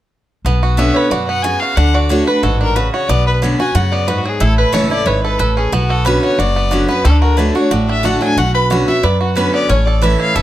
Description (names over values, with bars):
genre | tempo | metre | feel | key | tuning
bluegrass | 182 BPM | 4/4 | straight | B dorian | A4 = 439 Hz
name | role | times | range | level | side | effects
upright bass | bass | 0.4-10.4 s | E1 to F#2 | -16 LUFS | equal | none
bluegrass banjo | melody | 0.5-10.4 s | F#3 to B4 | -19 LUFS | right 5 dB | none
picked steel-string acoustic guitar | accompaniment | 0.5-10.4 s | E2 to F#4 | -18 LUFS | equal | none
clear fiddle | melody | 0.8-10.4 s | F#4 to B5 | -19 LUFS | left 3 dB | none
room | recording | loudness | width
light reverb | none | -12 LUFS | side -13 dB against mid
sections
0.4-10.4 A section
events
none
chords
0.4 Bmadd9; 1.8 D; 3.1 Bmadd9; 4.4 A; 5.7 Bmadd9; 7.1 D; 8.4 Bmadd9; 9.7 A